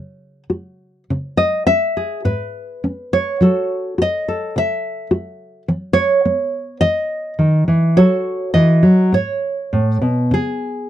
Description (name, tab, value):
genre	folk, solo fingerstyle acoustic guitar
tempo	104 BPM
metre	4/4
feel	rubato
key	C# minor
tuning	A4 = 440 Hz
part	nylon-string guitar	solo	0.0-10.9 s	G#2 to E5	-15 LUFS	equal	none
room	little or no reverb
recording	dry, close 1970s-style studio recording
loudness	-15 LUFS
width	side -12 dB against mid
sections	0.0-10.3 A section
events	none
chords	0.0 F#5; 1.1 C#m; 3.4 F#m; 5.7 E5; 8.0 F#m; 9.1 G#sus4; 10.3 C#5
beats	0.49 | 1.09 1.67 2.25 2.83 | 3.41 3.98 4.55 5.12 | 5.68 6.25 6.82 7.39 | 7.96 8.54 9.12 9.72 | 10.32